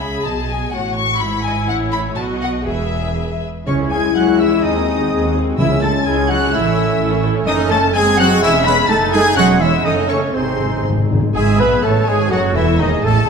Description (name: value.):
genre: quick classical-period movement for symphony orchestra.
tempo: 126 BPM.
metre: 2/4.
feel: rubato.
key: E major, C# minor from 3.7 s.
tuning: A4 = 440 Hz.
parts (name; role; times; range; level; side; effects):
rich studio violin section; melody; 0.0-13.3 s; B4 to B6; -24 LUFS; left 3 dB; none.
rich chamber violin section; second line; 0.0-13.3 s; D#4 to C#6; -24 LUFS; left 4 dB; none.
rich chamber viola section; accompaniment; 0.0-13.3 s; B#3 to E5; -24 LUFS; right 2 dB; none.
rich chamber double bass section; bass; 0.0-13.3 s; E1 to D#2; -22 LUFS; right 3 dB; none.
warm chamber cello section; bass; 0.0-13.3 s; D#2 to B3; -22 LUFS; right 3 dB; none.
bright concert flute; second line; 3.7-13.3 s; B#4 to B5; -24 LUFS; left 2 dB; none.
clear oboe; second line; 3.7-13.2 s; D#4 to B5; -26 LUFS; right 1 dB; none.
warm clarinet; second line; 3.7-13.1 s; B#3 to B4; -25 LUFS; left 4 dB; none.
mellow bassoon; accompaniment; 3.7-13.3 s; D#3 to B3; -24 LUFS; right 3 dB; none.
mellow French horn section; sustained chords; 3.7-13.3 s; D#3 to E4; -22 LUFS; left 7 dB; none.
clear trumpet section; stabs; 3.7-13.3 s; B#3 to B4; -22 LUFS; right 1 dB; none.
timpani; percussion; 3.7-6.3, 10.4-11.3 s; G#2 to C#3; -21 LUFS; equal; none.
room: wet scoring stage reverb, RT60 1.9 s.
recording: none.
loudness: -14 LUFS.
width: side -6 dB against mid.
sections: 0.0-3.7 A section; 3.7-11.4 B section; 11.4-13.3 C section.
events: timpani fill 10.4-11.4.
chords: 0.3 G#m/B; 0.7 F#m/A; 1.2 E/G#; 1.7 F#m/A (rootless); 2.2 B; 2.7 E; 3.7 C#m; 4.6 G#7/D#; 5.6 C#m; 6.5 A; 7.5 D#m7b5/F#; 7.9 G#7/F#; 8.4 C#m/E; 8.9 D#dim/F#; 9.4 C#m/E; 9.9 D#m7b5/F#; 10.4 G#; 11.4 C#m/G#; 12.3 F#m; 12.8 G#5/D#.